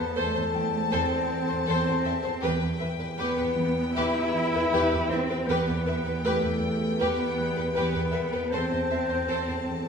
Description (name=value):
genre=cinematic, suspense film score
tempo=79 BPM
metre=4/4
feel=straight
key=E minor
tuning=A4 = 441 Hz
part: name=warm chamber violin section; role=melody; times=0.0-9.9 s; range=G5 to A5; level=-34 LUFS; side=left 5 dB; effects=none
part: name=dark clarinet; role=second line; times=0.0-9.8 s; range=A4 to E5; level=-33 LUFS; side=left 3 dB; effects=none
part: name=warm chamber violin section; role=second line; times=0.0-9.6 s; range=G4 to E5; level=-35 LUFS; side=left 3 dB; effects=none
part: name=warm chamber viola section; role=accompaniment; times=0.0-9.6 s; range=B4 to C5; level=-33 LUFS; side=right 1 dB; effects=none
part: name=dark French horn section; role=sustained chords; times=0.0-9.9 s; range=G4 to C5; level=-34 LUFS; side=left 2 dB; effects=none
part: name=clear chamber double bass section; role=bass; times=0.0-9.5 s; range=E2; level=-36 LUFS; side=right 2 dB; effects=none
part: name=dark chamber cello section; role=bass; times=0.0-9.9 s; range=A3 to E4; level=-30 LUFS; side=right 2 dB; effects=none
part: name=bowed-like drone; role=drone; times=0.0-9.9 s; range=E2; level=-35 LUFS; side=right 3 dB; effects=built-in reverb
part: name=concert harp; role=texture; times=0.0-9.7 s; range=G4 to F#6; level=-40 LUFS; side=left 6 dB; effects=none
part: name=warm studio cello section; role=riff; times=0.2-9.9 s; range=E2 to E3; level=-34 LUFS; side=right 2 dB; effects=none
room=wet recital hall reverb, RT60 1.7 s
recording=recorded in a church or concert hall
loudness=-24 LUFS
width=side -6 dB against mid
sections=0.0-9.9 A section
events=none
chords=0.0 Am/E; 2.4 Em; 8.5 Am/E